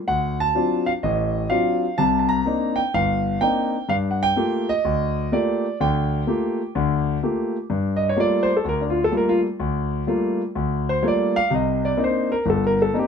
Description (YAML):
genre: solo jazz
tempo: 126 BPM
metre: 4/4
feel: swing 66% on 8ths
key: G minor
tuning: A4 = 439 Hz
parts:
  - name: warm concert grand piano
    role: solo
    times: 0.1-13.1 s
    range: G1 to Bb5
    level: -19 LUFS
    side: equal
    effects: none
room: moderate studio reverb, RT60 0.7 s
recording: dark, warm production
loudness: -19 LUFS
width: side -6 dB against mid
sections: 0.0-7.7 A section; 7.7-13.1 B section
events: grand piano solo 7.7-13.1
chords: 0.1 D7#9; 2.0 Cm9; 3.9 Gm9; 11.5 Cm9